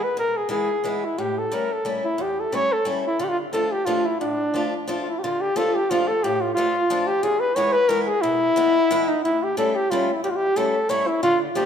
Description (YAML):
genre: musette waltz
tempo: 180 BPM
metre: 3/4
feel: swing 54% on 8ths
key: D harmonic minor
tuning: A4 = 440 Hz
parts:
  - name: mellow flugelhorn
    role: melody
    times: 0.0-11.7 s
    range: D4 to C#5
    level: -21 LUFS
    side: equal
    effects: none
  - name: picked old ladder-braced acoustic guitar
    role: accompaniment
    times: 0.0-11.7 s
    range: E2 to F4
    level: -26 LUFS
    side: left 1 dB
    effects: none
room: moderate recital hall reverb, RT60 1.7 s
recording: none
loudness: -20 LUFS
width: side -8 dB against mid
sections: 0.0-5.2 A section; 5.2-11.7 A section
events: none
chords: 0.0 E; 1.2 A7; 3.2 Dm; 7.2 E; 9.2 A7